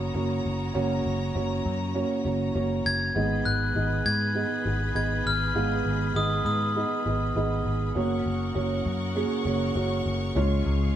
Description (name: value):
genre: piano-driven pop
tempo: 100 BPM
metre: 4/4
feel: swing 56% on 16ths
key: F# major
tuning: A4 = 440 Hz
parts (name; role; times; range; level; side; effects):
- felt-muted upright piano; accompaniment; 0.0-11.0 s; G#2 to F#5; -28 LUFS; right 2 dB; none
- rich studio string section; sustained chords; 0.0-11.0 s; F#4 to C#6; -37 LUFS; left 2 dB; none
- vintage muted picked electric bass; bass; 0.0-10.9 s; F#1 to G#2; -28 LUFS; equal; none
- glockenspiel with brass mallets; melody; 2.9-7.6 s; D#6 to G#6; -29 LUFS; left 2 dB; none
room: moderate stone room reverb, RT60 1.1 s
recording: band playing live in one room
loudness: -24 LUFS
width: side -10 dB against mid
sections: 0.0-11.0 A section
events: none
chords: 0.0 F#; 3.2 G#m; 8.0 F#; 10.4 C#